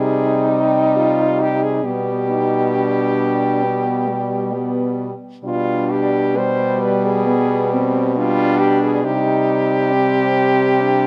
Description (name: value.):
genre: classical, lyrical piece for horn quartet.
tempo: 67 BPM.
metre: 4/4.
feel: rubato.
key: unclear.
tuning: A4 = 440 Hz.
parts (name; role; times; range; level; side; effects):
warm French horn; melody; 0.0-11.1 s; F4 to C5; -22 LUFS; equal; none.
mellow French horn; second line; 0.0-11.1 s; G3 to Eb4; -23 LUFS; equal; none.
clear French horn; accompaniment; 0.0-11.1 s; G3; -26 LUFS; equal; none.
warm French horn; bass; 0.0-11.1 s; B2 to C3; -24 LUFS; equal; none.
room: moderate scoring stage reverb, RT60 2.0 s.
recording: close, detailed microphones.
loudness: -18 LUFS.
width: mono.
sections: 0.0-11.1 A section.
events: none.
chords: 0.0 Cm; 1.8 G/B; 9.0 Cm.